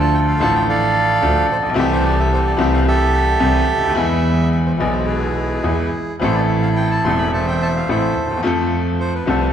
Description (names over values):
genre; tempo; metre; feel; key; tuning
tango; 108 BPM; 4/4; rubato; A minor; A4 = 440 Hz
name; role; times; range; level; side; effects
bandoneon; melody; 0.0-9.5 s; E4 to C6; -19 LUFS; right 2 dB; none
bright upright piano; accompaniment; 0.0-9.5 s; E1 to A4; -19 LUFS; left 2 dB; none
warm double bass; bass; 0.0-9.5 s; E1 to F2; -20 LUFS; right 1 dB; none
room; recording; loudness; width
wet recital hall reverb, RT60 1.6 s; recorded in a church or concert hall; -15 LUFS; side -9 dB against mid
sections
0.0-9.5 A section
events
none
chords
0.0 Dm; 1.8 Am7/C; 4.0 E; 6.2 Am; 8.4 F